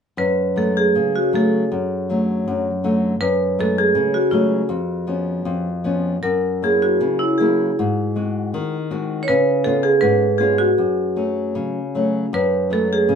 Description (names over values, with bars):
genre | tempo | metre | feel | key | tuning
fado-style ballad | 79 BPM | 2/4 | rubato | F# harmonic minor | A4 = 439 Hz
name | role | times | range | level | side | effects
marimba with hard mallets | melody | 0.2-13.1 s | E4 to C#5 | -19 LUFS | right 2 dB | none
nylon-string guitar | accompaniment | 0.2-13.2 s | E#2 to F#4 | -21 LUFS | left 2 dB | none
room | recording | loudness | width
moderate studio reverb, RT60 0.5 s | band playing live in one room | -17 LUFS | side -7 dB against mid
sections
0.2-12.3 A section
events
none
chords
0.2 F#madd9; 1.7 D/F#; 3.2 F#madd9; 4.7 C#7/E#; 6.2 F#7; 7.8 G#7; 9.3 C#7; 10.8 F#m; 12.3 F#madd9